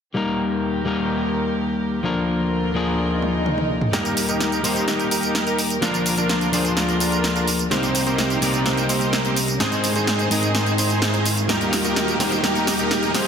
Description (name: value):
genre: EDM, festival progressive house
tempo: 127 BPM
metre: 4/4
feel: straight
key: Eb major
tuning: A4 = 442 Hz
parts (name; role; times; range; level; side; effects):
- electric guitar at the edge of break-up; accompaniment; 0.1-13.3 s; Ab2 to C5; -22 LUFS; left 2 dB; tape echo
- dark studio string section; sustained chords; 0.2-13.3 s; C2 to Bb4; -27 LUFS; equal; low-pass filter
- swell and riser; sound effects; 3.1-13.3 s; none; -31 LUFS; right 2 dB; none
- big-room dance drum kit; drums; 3.2-13.2 s; hi-hat, snare drum, tambourine, toms; -23 LUFS; right 1 dB; none
- dense compressed supersaw; riff; 3.9-13.3 s; Bb3 to Eb5; -24 LUFS; right 2 dB; low-pass filter, tape echo
room: wet scoring stage reverb, RT60 1.7 s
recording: dense, heavily limited modern master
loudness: -18 LUFS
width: side -7 dB against mid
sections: 0.2-3.9 A section; 3.9-13.3 B section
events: swell 3.1-3.9; drum fill 3.2-3.9, 3.9-13.3; build-up 3.9-13.3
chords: 0.2 Eb; 2.0 Bb/D; 3.9 Eb; 5.8 Bb/D; 7.7 Cm7; 9.6 Ab; 11.5 Eb